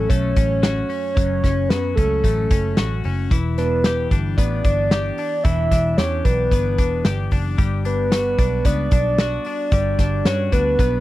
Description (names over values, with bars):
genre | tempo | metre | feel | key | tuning
jangly indie pop | 112 BPM | 4/4 | straight | E dorian | A4 = 437 Hz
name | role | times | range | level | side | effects
soft octave-layered synth lead | melody | 0.0-11.0 s | A4 to E5 | -22 LUFS | right 1 dB | chorus, slapback echo
twelve-string electric guitar | arpeggios | 0.0-11.0 s | F#2 to G4 | -26 LUFS | left 7 dB | none
vintage muted picked electric bass | bass | 0.0-11.0 s | E1 to G2 | -22 LUFS | equal | none
loose indie drum kit | drums | 0.1-10.9 s | hi-hat, kick drum, snare drum | -18 LUFS | equal | none
room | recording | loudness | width
little or no reverb | dry, close 1970s-style studio recording | -17 LUFS | side -16 dB against mid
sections
0.0-11.0 A section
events
none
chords
0.0 F#m; 3.3 Em7; 7.6 Gmaj7